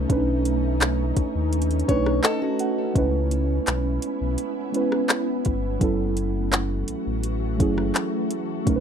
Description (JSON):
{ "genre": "contemporary R&B", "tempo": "84 BPM", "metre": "4/4", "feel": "straight", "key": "F# dorian", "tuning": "A4 = 443 Hz", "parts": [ { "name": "muted felt-like synth keys", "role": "accompaniment", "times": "0.0-8.8 s", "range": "F#3 to F#5", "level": "-26 LUFS", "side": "right 5 dB", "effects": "chorus" }, { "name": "ethereal airy pad", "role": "sustained chords", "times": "0.0-8.8 s", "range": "E3 to F#4", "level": "-28 LUFS", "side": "left 1 dB", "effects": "ensemble chorus, built-in reverb" }, { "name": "sub bass with octave", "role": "bass", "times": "0.0-8.8 s", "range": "F#1 to D#2", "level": "-25 LUFS", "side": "left 1 dB", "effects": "none" }, { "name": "smooth R&B drum kit", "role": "drums", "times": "0.1-8.8 s", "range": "handclaps, hi-hat, kick drum, rim click", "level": "-23 LUFS", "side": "left 1 dB", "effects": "overdrive" }, { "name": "fingerpicked plugged-in steel-string acoustic guitar", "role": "arpeggios", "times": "1.9-2.9 s", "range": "F#4 to C#5", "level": "-28 LUFS", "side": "left 8 dB", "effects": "ping-pong delay" } ], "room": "light reverb", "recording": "faint mains hum", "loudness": "-21 LUFS", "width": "side -8 dB against mid", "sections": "0.0-8.8 A section", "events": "synth keys fill 1.9-3.0", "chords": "0.0 B9; 3.0 C#m7; 5.8 F#m7" }